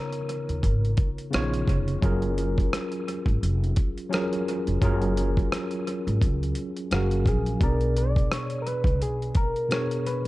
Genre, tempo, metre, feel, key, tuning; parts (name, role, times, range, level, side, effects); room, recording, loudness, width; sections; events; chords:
lo-fi hip hop; 86 BPM; 4/4; swing 57% on 16ths; F# major; A4 = 440 Hz
soft struck synth lead; melody; 0.0-1.7, 6.9-10.3 s; F#4 to D5; -31 LUFS; equal; chorus
bright tine electric piano; accompaniment; 0.0-10.3 s; B2 to E#5; -29 LUFS; equal; overdrive, fast stereo tremolo, analog delay
dusty soul sampler-style drum kit; drums; 0.1-10.3 s; hi-hat, kick drum, rim click; -26 LUFS; equal; overdrive
upright bass; bass; 0.5-10.3 s; E#1 to D#2; -26 LUFS; equal
light reverb, digital ambience; echo-heavy mix; -23 LUFS; side -18 dB against mid
0.0-10.3 A section
0.0 C#7; 2.0 F#maj9; 7.6 Bm6